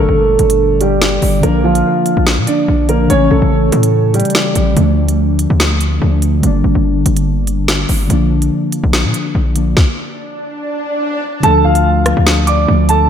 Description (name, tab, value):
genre	hip hop, drill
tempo	144 BPM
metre	4/4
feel	half-time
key	D harmonic minor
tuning	A4 = 440 Hz
part	dark concert grand piano	melody	0.0-4.7, 11.4-13.1 s	F3 to D6	-14 LUFS	right 2 dB	wide subtle chorus, diffuse ambient delay
part	warbly lo-fi synth keys	accompaniment	0.0-13.1 s	Bb2 to D4	-17 LUFS	left 1 dB	chorus
part	hard-hitting 808-style bass	bass	0.0-13.1 s	G1 to Bb2	-14 LUFS	equal	none
part	drill drum kit	drums	0.4-13.0 s	hi-hat, kick drum, rim click, snare drum	-17 LUFS	equal	none
part	swell	sound effects	10.2-11.4 s	none	-22 LUFS	equal	none
room	moderate lush hall reverb, RT60 1.9 s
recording	dreamy mix soaked in reverb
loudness	-11 LUFS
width	side -8 dB against mid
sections	0.0-11.4 A section; 11.4-13.1 B section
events	break 4.8-11.4; stop 9.8-11.4; swell 10.2-11.4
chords	0.0 Gm; 1.4 Bb; 3.1 A; 4.8 Dm; 6.4 Gm; 8.1 Bb; 9.8 N.C.; 11.4 Dm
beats	0.18 0.60 1.02 | 1.43 1.85 2.27 2.68 | 3.10 3.52 3.93 4.35 | 4.77 5.18 5.60 6.02 | 6.43 6.85 7.27 7.68 | 8.10 8.52 8.93 9.35 | 9.77 10.18 10.60 11.02 | 11.43 11.85 12.27 12.68